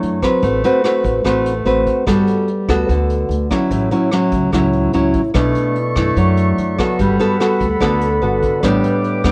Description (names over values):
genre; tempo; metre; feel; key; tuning
bossa nova; 146 BPM; 4/4; straight; unclear; A4 = 439 Hz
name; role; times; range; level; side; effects
nylon-string guitar; accompaniment; 0.0-9.3 s; A2 to B4; -17 LUFS; equal; none
upright bass; bass; 0.0-9.3 s; G1 to F#2; -23 LUFS; equal; none
vintage brush drum kit; drums; 0.0-9.3 s; hi-hat, kick drum, rim click; -27 LUFS; equal; none
warm woodwind section; sustained chords; 5.4-9.3 s; A4 to D6; -26 LUFS; equal; none
room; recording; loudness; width
light reverb; worn, warbling old tape, cassette tape, warbly pitch drift; -16 LUFS; mono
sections
0.0-9.3 A section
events
none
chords
0.4 Am69; 2.1 Gmaj9; 3.7 F#m7/A; 5.3 Bm11; 7.0 Gmaj9; 8.6 A9sus4